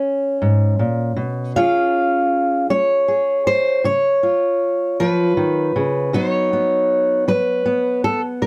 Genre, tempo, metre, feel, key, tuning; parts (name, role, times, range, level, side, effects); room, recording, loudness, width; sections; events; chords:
acoustic country blues, solo or duo; 52 BPM (dotted quarters); 12/8; straight; A4 = 440 Hz
fingerpicked steel-string acoustic guitar; solo; 0.0-8.5 s; G#2 to E#5; -18 LUFS; equal
light reverb; close, detailed microphones; -18 LUFS; mono
0.0-8.5 A section
0.0 F# (rootless); 1.6 C#; 6.1 B